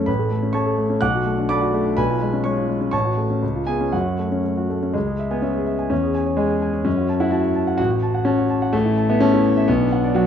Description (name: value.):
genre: classical, virtuoso piano study.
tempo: 126 BPM.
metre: 2/4.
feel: rubato.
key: F# minor, C# minor from 4.9 s.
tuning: A4 = 437 Hz.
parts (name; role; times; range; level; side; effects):
warm concert grand piano; solo; 0.0-10.3 s; A1 to F#6; -18 LUFS; left 1 dB; none.
room: moderate large studio reverb, RT60 1.2 s.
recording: dark, warm production.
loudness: -18 LUFS.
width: side -8 dB against mid.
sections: 0.0-4.9 A section; 4.9-10.3 B section.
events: none.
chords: 0.1 A; 1.0 Bm7; 2.0 C#7/B; 2.9 F#m/A; 3.4 C#7; 3.9 F#m; 4.9 C#m; 5.9 C#m/E; 6.9 F#m; 7.8 F#m/A; 8.7 A; 9.7 Bm.